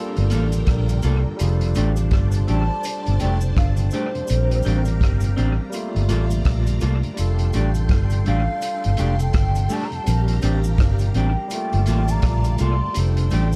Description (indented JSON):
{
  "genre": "lovers rock reggae",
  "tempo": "83 BPM",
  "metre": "4/4",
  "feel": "swing 61% on 16ths",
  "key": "F major",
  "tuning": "A4 = 437 Hz",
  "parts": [
    { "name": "string machine, violins", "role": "second line", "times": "0.0-13.6 s", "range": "D4 to C6", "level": "-37 LUFS", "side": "equal", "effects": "phaser, ensemble chorus" },
    { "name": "barky tine electric piano", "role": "accompaniment", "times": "0.0-13.6 s", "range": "G3 to Bb4", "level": "-33 LUFS", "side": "equal", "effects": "overdrive, dub echo" },
    { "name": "mellow tonewheel organ", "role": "accompaniment", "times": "0.2-13.6 s", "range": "F2 to F4", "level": "-36 LUFS", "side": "equal", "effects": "none" },
    { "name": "vintage muted fingered electric bass", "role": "bass", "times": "0.2-13.6 s", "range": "F1 to C2", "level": "-22 LUFS", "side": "equal", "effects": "none" },
    { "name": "vintage drum kit", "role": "drums", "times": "0.2-13.6 s", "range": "hi-hat, kick drum, rim click", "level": "-26 LUFS", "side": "equal", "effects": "dub echo" },
    { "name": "electric guitar through a small old amp", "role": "stabs", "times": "0.3-13.5 s", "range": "A3 to A4", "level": "-33 LUFS", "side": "equal", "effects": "dub echo" },
    { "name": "cabasa", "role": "percussion", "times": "0.3-13.6 s", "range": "none", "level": "-44 LUFS", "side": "equal", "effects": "none" },
    { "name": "hollow clarinet-like synth lead", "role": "melody", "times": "2.5-13.0 s", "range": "C5 to C6", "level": "-31 LUFS", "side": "equal", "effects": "chorus, tape echo" }
  ],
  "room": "studio ambience",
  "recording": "dark, warm production",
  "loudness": "-20 LUFS",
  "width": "mono",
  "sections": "0.0-13.6 A section",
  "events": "none",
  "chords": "0.0 Gm9; 1.4 F69; 4.3 Gm9; 7.2 F69; 10.1 Gm9; 12.9 F69",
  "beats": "0.67 | 1.39 2.11 2.84 3.56 | 4.28 5.00 5.73 6.45 | 7.17 7.89 8.62 9.34 | 10.06 10.78 11.51 12.23 | 12.95"
}